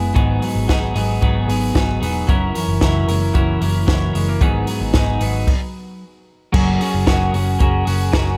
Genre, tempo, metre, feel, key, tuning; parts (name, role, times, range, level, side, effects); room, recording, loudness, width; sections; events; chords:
jangly indie pop; 113 BPM; 4/4; straight; A4 = 442 Hz
twelve-string electric guitar; accompaniment; 0.0-8.4 s; G#2 to A#4; -25 LUFS; equal; spring reverb
mellow electric guitar; arpeggios; 0.0-8.4 s; F#2 to A#4; -25 LUFS; equal; digital delay
vintage muted picked electric bass; bass; 0.0-8.4 s; E1 to G#1; -23 LUFS; equal
compact cocktail drum kit; drums; 0.2-8.3 s; crash cymbal, hi-hat, kick drum, snare drum; -22 LUFS; equal
light reverb; -18 LUFS; mono
0.0-6.5 A section; 6.5-8.4 B section
stop 5.5-6.5
0.2 G#m7; 2.3 F#7; 4.4 G#m7; 6.5 F#add9